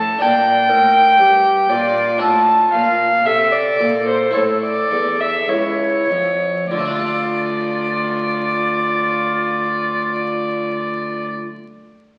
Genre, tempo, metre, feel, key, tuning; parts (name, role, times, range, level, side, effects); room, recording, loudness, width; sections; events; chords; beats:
classical, baroque-style sonata movement with continuo; 48-63 BPM; 4/4; straight; D minor; A4 = 440 Hz
dark violin; second line; 0.0-11.3 s; C5 to A5; -18 LUFS; equal
harpsichord; accompaniment; 0.0-11.7 s; C#2 to F5; -28 LUFS; equal
rich cello; bass; 0.0-11.3 s; C#2 to C3; -31 LUFS; equal
tenor recorder; melody; 0.2-11.3 s; E4 to D5; -25 LUFS; equal
wet recital hall reverb, RT60 1.3 s; very old 78 rpm record, vinyl crackle; -17 LUFS; mono
0.0-6.7 A section; 6.7-11.6 B section
slowing down 0.0-6.7
0.2 Gm; 2.2 D5/A; 4.3 A; 6.7 Dm
0.21 1.19 | 2.21 3.25 4.34 5.49 | 6.71 7.94 9.16 10.39